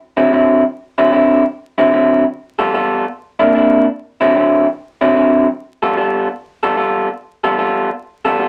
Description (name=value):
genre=blues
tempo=148 BPM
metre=4/4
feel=swing 65% on 8ths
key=unclear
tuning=A4 = 439 Hz
part: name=electric guitar through a small old amp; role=solo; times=0.2-8.5 s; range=C3 to A4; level=-14 LUFS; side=equal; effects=none
room=moderate studio ambience, RT60 0.5 s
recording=vinyl crackle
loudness=-15 LUFS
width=mono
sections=0.0-5.6 A section; 5.6-8.5 B section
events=none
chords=0.0 D9; 2.3 G9; 3.1 C9; 3.9 D9; 5.6 G9